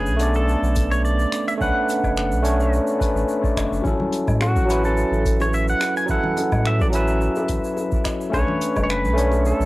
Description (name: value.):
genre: sunset chillout.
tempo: 107 BPM.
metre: 4/4.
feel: straight.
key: A major.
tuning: A4 = 440 Hz.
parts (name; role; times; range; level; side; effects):
pedal steel guitar; melody; 0.0-9.7 s; F#4 to G#5; -25 LUFS; equal; cassette tape, tape echo.
overdriven tine electric piano; accompaniment; 0.0-9.7 s; F#3 to D5; -22 LUFS; equal; auto-pan, vintage 12-bit sampler grit, low-pass filter, cassette tape.
round analog bass; bass; 0.0-9.7 s; F#1 to A2; -21 LUFS; equal; none.
jazz brush drum kit; drums; 0.1-9.7 s; finger snaps, hi-hat, shaker, woodblock; -32 LUFS; equal; none.
electronic kick drum; drums; 0.8-8.9 s; none; -25 LUFS; equal; overdrive.
bongos and congas; percussion; 3.8-9.4 s; none; -31 LUFS; left 1 dB; none.
room: light reverb, small room ambience.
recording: home recording on cassette.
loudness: -18 LUFS.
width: side -19 dB against mid.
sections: 0.0-9.7 A section.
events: none.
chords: 0.0 Bm9; 3.8 A6; 8.3 Bm9.